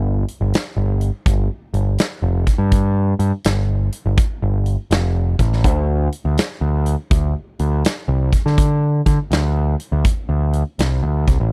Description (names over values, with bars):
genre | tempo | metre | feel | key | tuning
blues rock power trio and southern rock | 82 BPM | 4/4 | swing 66% on 8ths | D minor | A4 = 441 Hz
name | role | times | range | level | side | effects
growling picked electric bass | bass | 0.0-11.5 s | F1 to D3 | -19 LUFS | equal | overdrive
huge arena drum kit | drums | 0.3-11.4 s | hi-hat, kick drum, snare drum | -21 LUFS | equal | none
room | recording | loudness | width
little or no reverb | dry, close 1970s-style studio recording | -19 LUFS | mono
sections
0.0-11.5 A section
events
none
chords
none